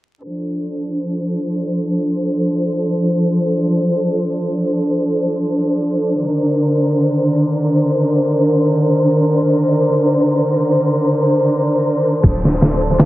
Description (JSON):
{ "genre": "trip hop", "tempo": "free time", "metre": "none", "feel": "none", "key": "D phrygian", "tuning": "A4 = 438 Hz", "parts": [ { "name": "dark studio string section", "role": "sustained chords", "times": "0.2-13.1 s", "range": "D3 to C5", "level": "-14 LUFS", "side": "equal", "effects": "vintage 12-bit sampler grit, low-pass filter" }, { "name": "round analog bass", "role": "bass", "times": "12.2-13.1 s", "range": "D1", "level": "-20 LUFS", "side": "equal", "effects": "none" }, { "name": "trip hop sampler-style drum kit", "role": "drums", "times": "12.2-13.1 s", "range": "kick drum, ride cymbal, snare drum", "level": "-13 LUFS", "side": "equal", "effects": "studio reverb, analog delay" } ], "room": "light reverb", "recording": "echo-heavy mix, vinyl crackle, low-pass filter", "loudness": "-14 LUFS", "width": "side -16 dB against mid", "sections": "0.2-13.1 A section", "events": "filter sweep on string section 0.2-13.1; filter sweep 0.2-13.1", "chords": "0.2 Dm7; 6.2 Cm9/D; 12.2 Dm7", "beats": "free time" }